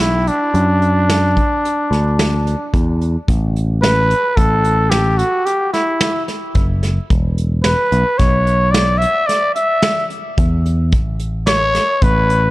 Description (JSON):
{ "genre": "progressive instrumental, band music in an uneven meter", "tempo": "110 BPM", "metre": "7/4", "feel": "straight", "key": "unclear", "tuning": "A4 = 440 Hz", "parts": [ { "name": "growling trumpet", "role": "melody", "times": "0.0-12.5 s", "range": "D4 to E5", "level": "-16 LUFS", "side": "equal", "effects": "analog delay" }, { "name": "picked electric bass", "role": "bass", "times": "0.0-12.5 s", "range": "E1 to F#2", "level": "-16 LUFS", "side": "equal", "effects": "none" }, { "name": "vintage brush drum kit", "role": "drums", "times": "0.3-12.4 s", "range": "hi-hat, kick drum, snare drum", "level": "-18 LUFS", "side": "equal", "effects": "none" } ], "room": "light reverb, studio reverb", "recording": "dark, warm production", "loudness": "-13 LUFS", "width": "side -18 dB against mid", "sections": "0.0-3.3 A section; 3.3-12.5 B section", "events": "none", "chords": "0.0 Bm; 3.3 A5; 7.1 E5; 10.9 A", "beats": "0.53 1.08 1.63 2.18 2.73 | 3.27 3.82 4.37 4.92 5.46 6.01 6.56 | 7.10 7.65 8.20 8.74 9.29 9.84 10.38 | 10.93 11.47 12.02" }